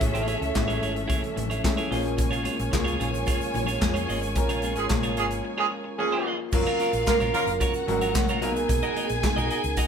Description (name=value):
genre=disco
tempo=111 BPM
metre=4/4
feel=straight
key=unclear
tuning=A4 = 440 Hz
part: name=warm symphonic string section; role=second line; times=0.0-9.9 s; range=C#4 to G#5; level=-31 LUFS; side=equal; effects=none
part: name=clean electric guitar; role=accompaniment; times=0.0-9.9 s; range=E4 to E#5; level=-32 LUFS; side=right 3 dB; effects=none
part: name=clear concert grand piano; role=accompaniment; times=0.0-9.9 s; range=E3 to A#4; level=-32 LUFS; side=left 2 dB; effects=none
part: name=mellow French horn section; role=sustained chords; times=0.0-9.9 s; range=E3 to A#4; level=-32 LUFS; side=right 2 dB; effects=none
part: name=hollow-body short-scale fingered electric bass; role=bass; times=0.0-9.8 s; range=F#1 to E#2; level=-31 LUFS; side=equal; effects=none
part: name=modern studio drum kit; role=drums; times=0.0-9.9 s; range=crash cymbal, handclaps, hi-hat, kick drum, snare drum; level=-28 LUFS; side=equal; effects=none
part: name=congas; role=percussion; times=0.0-9.9 s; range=none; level=-37 LUFS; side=left 5 dB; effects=none
part: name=tube shaker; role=percussion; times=2.2-9.9 s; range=none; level=-45 LUFS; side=right 4 dB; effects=none
part: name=warm horn section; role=stabs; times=4.8-7.5 s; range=E#3 to A#4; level=-27 LUFS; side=right 5 dB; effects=none
room=moderate studio reverb, RT60 0.8 s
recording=band playing live in one room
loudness=-23 LUFS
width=side -7 dB against mid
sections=0.0-6.5 A section; 6.5-9.9 B section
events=band accent 4.4-6.5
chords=0.0 Amaj7; 1.9 A#m7; 6.5 F#maj7; 8.4 Bmaj7